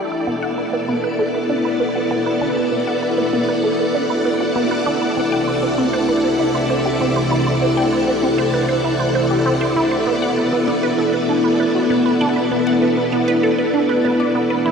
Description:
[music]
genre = ambient, sequencer-driven space music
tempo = 98 BPM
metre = 4/4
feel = straight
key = B phrygian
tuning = A4 = 440 Hz
[part]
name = string machine, full ensemble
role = sustained chords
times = 0.0-14.7 s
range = C3 to G5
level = -17 LUFS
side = left 1 dB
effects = ensemble chorus
[part]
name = resonant blip pluck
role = riff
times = 0.0-14.7 s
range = B3 to G5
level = -21 LUFS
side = right 2 dB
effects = phaser, tape echo
[sound]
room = wet huge ambient reverb, RT60 8.2 s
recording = in a vast, echoing space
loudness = -16 LUFS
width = side -6 dB against mid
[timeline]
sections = 0.0-14.7 A section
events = filter sweep on synth arpeggio sound 0.0-14.7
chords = 0.3 Bm; 5.2 C; 10.1 Bm

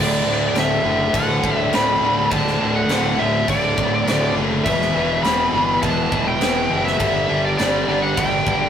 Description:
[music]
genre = heavy metal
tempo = 102 BPM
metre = 4/4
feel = straight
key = unclear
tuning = A4 = 436 Hz
[part]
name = high-gain lead guitar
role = melody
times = 0.0-8.7 s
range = D5 to B5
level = -21 LUFS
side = equal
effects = distortion
[part]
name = distorted electric guitar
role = riff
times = 0.0-8.7 s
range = D2 to G3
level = -27 LUFS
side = right 1 dB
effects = distortion
[part]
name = scooped high-gain guitar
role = riff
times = 0.0-8.7 s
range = D2 to G3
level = -26 LUFS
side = right 4 dB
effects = distortion
[part]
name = tight distorted guitar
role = riff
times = 0.0-8.7 s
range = D2 to G3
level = -23 LUFS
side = left 4 dB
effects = distortion
[part]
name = fuzz fingered electric bass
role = bass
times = 0.0-8.7 s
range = D1 to G1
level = -27 LUFS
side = equal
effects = overdrive
[part]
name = tight metal drum kit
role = drums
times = 0.6-8.6 s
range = crash cymbal, kick drum, snare drum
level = -24 LUFS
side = equal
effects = none
[sound]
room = wet booth ambience, RT60 0.2 s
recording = rough rehearsal-room recording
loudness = -16 LUFS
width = side -8 dB against mid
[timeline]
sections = 0.0-8.7 A section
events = none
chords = 0.0 D; 4.7 Em; 7.0 G5

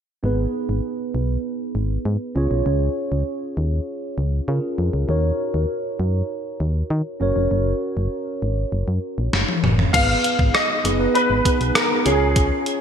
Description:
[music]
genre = 1980s-style pop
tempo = 99 BPM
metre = 4/4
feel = straight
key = G# dorian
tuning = A4 = 440 Hz
[part]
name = mellow tine electric piano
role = accompaniment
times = 0.2-12.8 s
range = B3 to C#5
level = -24 LUFS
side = right 2 dB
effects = wide subtle chorus
[part]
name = solid FM bass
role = bass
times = 0.2-12.5 s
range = E#1 to D#3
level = -21 LUFS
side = equal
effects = none
[part]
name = gated 80s digital drum machine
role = drums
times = 9.3-12.8 s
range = crash cymbal, hi-hat, kick drum, rim click, snare drum, toms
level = -20 LUFS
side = left 1 dB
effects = gated reverb, gated reverb snare
[part]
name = clear baby grand piano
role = melody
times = 9.9-12.8 s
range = G#4 to E#5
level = -21 LUFS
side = left 1 dB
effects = ensemble chorus
[sound]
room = moderate lush hall reverb, RT60 2.4 s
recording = bright 1980s-style digital production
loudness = -19 LUFS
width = side -8 dB against mid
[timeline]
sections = 0.2-9.9 A section; 9.9-12.8 B section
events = drum fill 9.3-9.9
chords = 0.2 G#m; 2.4 C#; 5.1 D#m7; 7.2 F#; 9.9 G#m; 12.1 C#

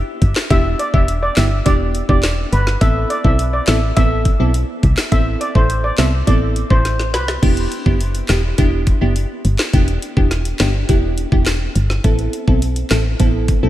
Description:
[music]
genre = dancehall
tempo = 104 BPM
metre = 4/4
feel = straight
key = E minor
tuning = A4 = 440 Hz
[part]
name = woody FM bass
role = bass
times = 0.0-13.7 s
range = E1 to C2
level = -17 LUFS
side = equal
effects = none
[part]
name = island pop drum kit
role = drums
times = 0.2-13.6 s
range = crash cymbal, handclaps, hi-hat, kick drum, snare drum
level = -17 LUFS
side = equal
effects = none
[part]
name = steel pan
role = melody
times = 0.5-7.2 s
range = B4 to E5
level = -22 LUFS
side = equal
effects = diffuse ambient delay
[part]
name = wavetable chord stab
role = accompaniment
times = 0.5-13.7 s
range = B3 to A4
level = -22 LUFS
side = right 1 dB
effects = none
[sound]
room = light reverb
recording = none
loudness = -14 LUFS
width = side -14 dB against mid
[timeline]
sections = 0.0-7.4 A section; 7.4-13.7 B section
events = drum fill 6.9-7.4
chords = 0.0 Em7; 2.8 Amadd9; 7.4 Em7; 12.0 Amadd9

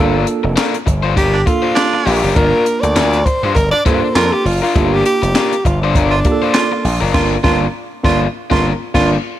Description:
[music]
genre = funk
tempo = 100 BPM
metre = 4/4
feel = swing 56% on 16ths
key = G minor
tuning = A4 = 440 Hz
[part]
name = overdriven electric guitar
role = accompaniment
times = 0.0-9.2 s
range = D4 to C5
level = -20 LUFS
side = left 8 dB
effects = none
[part]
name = tine electric piano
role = stabs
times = 0.0-9.2 s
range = Bb3 to Bb4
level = -19 LUFS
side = right 4 dB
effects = overdrive, auto-pan
[part]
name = gritty slap bass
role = bass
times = 0.0-9.2 s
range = F1 to G2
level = -17 LUFS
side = equal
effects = overdrive
[part]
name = compact cocktail drum kit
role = drums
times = 0.3-9.2 s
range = crash cymbal, handclaps, hi-hat, kick drum, snare drum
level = -18 LUFS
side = equal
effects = none
[part]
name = breathy tenor saxophone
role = melody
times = 1.2-7.3 s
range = D4 to D5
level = -17 LUFS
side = equal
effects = tape echo
[part]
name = raspy baritone saxophone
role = second line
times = 1.3-9.1 s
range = D4 to F4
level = -21 LUFS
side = right 4 dB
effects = none
[sound]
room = light reverb, small room ambience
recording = none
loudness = -12 LUFS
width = side -12 dB against mid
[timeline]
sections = 0.0-9.4 A section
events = tenor saxophone solo 0.0-9.4; band accent 7.2-9.4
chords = 0.0 Gm7

